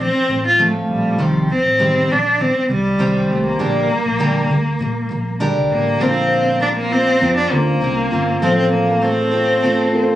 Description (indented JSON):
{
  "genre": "acoustic pop",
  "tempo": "100 BPM",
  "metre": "4/4",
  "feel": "straight",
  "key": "Bb major",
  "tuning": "A4 = 440 Hz",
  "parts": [
    { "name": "warm cello", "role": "melody", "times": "0.0-10.2 s", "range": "F3 to F4", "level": "-17 LUFS", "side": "equal", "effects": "none" },
    { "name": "picked steel-string acoustic guitar", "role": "accompaniment", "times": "0.0-10.2 s", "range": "A2 to C5", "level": "-20 LUFS", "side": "right 1 dB", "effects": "none" },
    { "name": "vintage muted fingered electric bass", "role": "bass", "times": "0.0-10.2 s", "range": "G1 to Bb2", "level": "-23 LUFS", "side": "equal", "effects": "none" },
    { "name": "dark upright piano", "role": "accompaniment", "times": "6.0-10.2 s", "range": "A3 to C5", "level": "-23 LUFS", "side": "left 3 dB", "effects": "none" }
  ],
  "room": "moderate studio ambience, RT60 0.4 s",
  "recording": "recorded on a phone in the room, club reverb, compression",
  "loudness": "-14 LUFS",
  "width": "side -13 dB against mid",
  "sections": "0.0-6.0 A section; 6.0-10.2 B section",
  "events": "none",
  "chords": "0.0 F/A; 1.2 Cm; 3.6 Gm/Bb; 6.0 Bbadd9; 8.4 F/A"
}